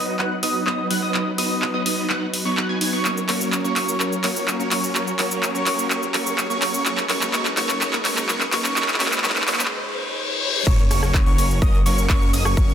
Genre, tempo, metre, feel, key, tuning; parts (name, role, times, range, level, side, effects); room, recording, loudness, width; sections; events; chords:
EDM, festival progressive house; 126 BPM; 4/4; straight; F# major; A4 = 442 Hz
lush unison pad; sustained chords; 0.0-12.7 s; C#3 to B4; -30 LUFS; equal; chorus, sidechain pumping
plucky unison lead; arpeggios; 0.0-12.7 s; C#6 to G#6; -27 LUFS; equal; wide subtle chorus, sidechain pumping, ping-pong delay
supersaw chords; riff; 0.0-12.7 s; F#3 to G#5; -26 LUFS; right 1 dB; phaser, sidechain pumping, low-pass filter, ping-pong delay
riser, reverse cymbal and sub drop; sound effects; 2.0-12.6 s; -31 LUFS; left 2 dB
big-room dance drum kit; drums; 0.2-12.7 s; crash cymbal, handclaps, hi-hat, rim click, shaker; -23 LUFS; equal
wide detuned saw bass; bass; 10.7-12.7 s; F#1; -22 LUFS; equal; chorus, sidechain pumping
electronic kick drum; drums; 10.7-12.7 s; -18 LUFS; equal
moderate lush hall reverb, RT60 2.6 s; dense, heavily limited modern master, high-pass filter; -18 LUFS; side -9 dB against mid
0.0-10.7 A section; 10.7-12.7 B section
build-up 0.0-10.7; drum fill 0.0-9.7; filter sweep on supersaw synth 0.0-10.7; break 9.7-10.7; reverse cymbal 9.7-10.7; drop 10.7-12.7; impact 10.7-12.6
0.0 B; 3.0 F#; 6.9 G#m; 10.7 F#